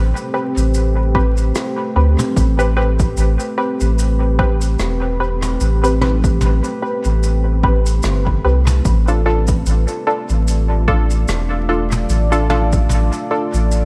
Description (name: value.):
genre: ambient dub.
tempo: 74 BPM.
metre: 4/4.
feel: swing 56% on 16ths.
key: A minor.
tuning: A4 = 440 Hz.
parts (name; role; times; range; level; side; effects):
deep dark ambient pad; sustained chords; 0.0-13.8 s; A3 to D5; -26 LUFS; equal; chorus, built-in reverb.
soft dub sub bass; bass; 0.0-13.8 s; E1 to D2; -18 LUFS; equal; none.
jazz brush drum kit; drums; 0.2-13.8 s; rim click, shaker, toms; -28 LUFS; equal; dub echo.
filtered dub chord stab; stabs; 0.3-13.6 s; C4 to B4; -24 LUFS; equal; chorus, cassette tape, dub echo.
electronic kick drum; drums; 1.1-12.9 s; none; -22 LUFS; equal; none.
room: little or no reverb.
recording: vinyl crackle.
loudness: -16 LUFS.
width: mono.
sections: 0.0-13.8 A section.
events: none.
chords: 0.0 Am9; 8.9 Dm.